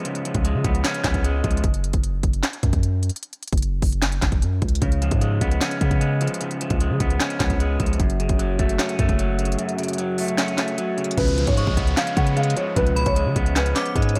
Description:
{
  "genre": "hip hop, trap",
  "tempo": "151 BPM",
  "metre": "4/4",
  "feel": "half-time",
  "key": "unclear",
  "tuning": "A4 = 440 Hz",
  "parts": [
    { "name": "electric guitar at the edge of break-up", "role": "accompaniment", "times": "0.0-1.6, 4.8-14.2 s", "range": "F#2 to C#4", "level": "-28 LUFS", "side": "equal", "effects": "spring reverb, low-pass filter" },
    { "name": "trap drum kit", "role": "drums", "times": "0.1-14.2 s", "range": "crash cymbal, handclaps, hi-hat, kick drum, snare drum", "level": "-25 LUFS", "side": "equal", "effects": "none" },
    { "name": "long sustained 808-style bass", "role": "bass", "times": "0.3-14.2 s", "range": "F#1 to C#3", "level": "-25 LUFS", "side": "equal", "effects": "none" },
    { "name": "dark concert grand piano", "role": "melody", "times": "11.2-14.2 s", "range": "B4 to F#5", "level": "-28 LUFS", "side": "equal", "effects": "low-pass filter" },
    { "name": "mellow synth brass", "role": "stabs", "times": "11.2-13.0 s", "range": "B2 to E#3", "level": "-34 LUFS", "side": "equal", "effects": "chorus, tape echo" },
    { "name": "downlifter", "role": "sound effects", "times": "11.2-14.2 s", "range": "none", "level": "-38 LUFS", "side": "equal", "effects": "none" },
    { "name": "metallic FM bell", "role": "second line", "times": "11.6-13.9 s", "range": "B5 to D6", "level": "-33 LUFS", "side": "equal", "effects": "chorus, tape echo" }
  ],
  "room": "digital ambience",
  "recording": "none",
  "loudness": "-22 LUFS",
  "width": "mono",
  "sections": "0.0-11.2 A section; 11.2-14.2 B section",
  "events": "kick muted 9.6-11.2",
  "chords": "0.0 C#7; 1.6 F#5; 4.8 C#7; 8.0 F#m; 11.2 C#7"
}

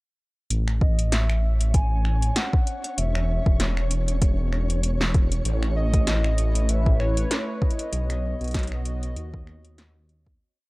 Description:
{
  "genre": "IDM",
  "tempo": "97 BPM",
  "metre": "4/4",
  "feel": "swing 56% on 16ths",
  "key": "A lydian",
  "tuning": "A4 = 440 Hz",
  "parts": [
    { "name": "dark detuned saw bass", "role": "bass", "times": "0.5-10.3 s", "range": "E1 to D#2", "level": "-23 LUFS", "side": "equal", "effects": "tube saturation" },
    { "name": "electro analog drum machine", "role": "drums", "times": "0.5-10.2 s", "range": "finger snaps, hi-hat, snare drum", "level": "-28 LUFS", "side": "equal", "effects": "none" },
    { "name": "flickering grainy texture", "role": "texture", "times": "1.3-10.4 s", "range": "C#4 to C#5", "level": "-37 LUFS", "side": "equal", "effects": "built-in reverb" },
    { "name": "warbly nostalgic lead", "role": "melody", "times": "0.8-9.8 s", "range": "C#5 to G#5", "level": "-33 LUFS", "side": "equal", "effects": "chorus, cassette tape, analog delay" },
    { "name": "electronic kick drum", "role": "drums", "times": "0.8-10.4 s", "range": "none", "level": "-21 LUFS", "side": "equal", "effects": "none" },
    { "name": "hollow soft pad", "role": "sustained chords", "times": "5.5-10.4 s", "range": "A3 to D#5", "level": "-35 LUFS", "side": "equal", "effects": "chorus" }
  ],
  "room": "digital ambience",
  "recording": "dry, gritty hardware recording",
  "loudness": "-21 LUFS",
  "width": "side -22 dB against mid",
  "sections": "0.5-10.4 groove",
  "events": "fade-out 7.1-10.4",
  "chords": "0.5 A6; 3.0 C#m/E; 5.5 A; 7.9 Badd9"
}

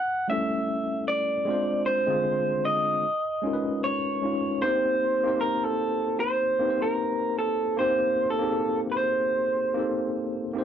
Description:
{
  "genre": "R&B",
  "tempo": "76 BPM",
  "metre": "4/4",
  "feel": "swing 56% on 16ths",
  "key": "C dorian",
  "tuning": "A4 = 440 Hz",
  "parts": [
    { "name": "electric guitar through a small old amp", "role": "melody", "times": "0.0-10.5 s", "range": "A4 to F#5", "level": "-25 LUFS", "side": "right 1 dB", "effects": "none" },
    { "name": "tine electric piano", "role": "accompaniment", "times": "0.3-10.6 s", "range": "D3 to Db5", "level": "-28 LUFS", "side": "left 1 dB", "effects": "overdrive, fast stereo tremolo" }
  ],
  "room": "moderate studio reverb, RT60 0.5 s",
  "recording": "dry, close 1970s-style studio recording",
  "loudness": "-23 LUFS",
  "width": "side -9 dB against mid",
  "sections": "0.0-10.6 A section",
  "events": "none",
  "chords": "0.0 A7; 1.5 Dm7b5; 3.0 Db9; 4.6 Cm7"
}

